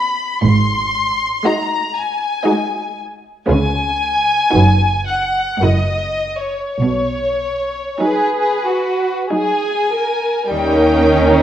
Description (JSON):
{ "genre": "classical, slow romantic movement for string orchestra", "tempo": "45-60 BPM", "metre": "3/4", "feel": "rubato", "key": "B major", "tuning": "A4 = 443 Hz", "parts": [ { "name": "rich chamber violin section", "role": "melody", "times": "0.0-11.4 s", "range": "B4 to B#5", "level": "-19 LUFS", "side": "left 2 dB", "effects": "none" }, { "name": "warm studio violin section", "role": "second line", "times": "0.0-11.4 s", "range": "G3 to D#5", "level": "-18 LUFS", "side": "equal", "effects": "none" }, { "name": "rich chamber viola section", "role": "accompaniment", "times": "0.0-11.4 s", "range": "F#3 to E4", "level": "-18 LUFS", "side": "right 1 dB", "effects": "none" }, { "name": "dark chamber double bass section", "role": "bass", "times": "0.4-11.4 s", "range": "F#1 to D#2", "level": "-20 LUFS", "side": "right 2 dB", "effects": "none" }, { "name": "rich chamber cello section", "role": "bass", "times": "0.5-11.4 s", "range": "F#2 to D#3", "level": "-19 LUFS", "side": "right 2 dB", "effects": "none" } ], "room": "moderate recital hall reverb, RT60 1.4 s", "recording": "worn, warbling old tape, cassette tape, warbly pitch drift", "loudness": "-14 LUFS", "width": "side -10 dB against mid", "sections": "0.0-10.5 A section", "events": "none", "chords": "0.4 G#7; 3.5 C#7; 4.5 B/F#; 5.6 F#9; 6.8 B; 10.5 D#7" }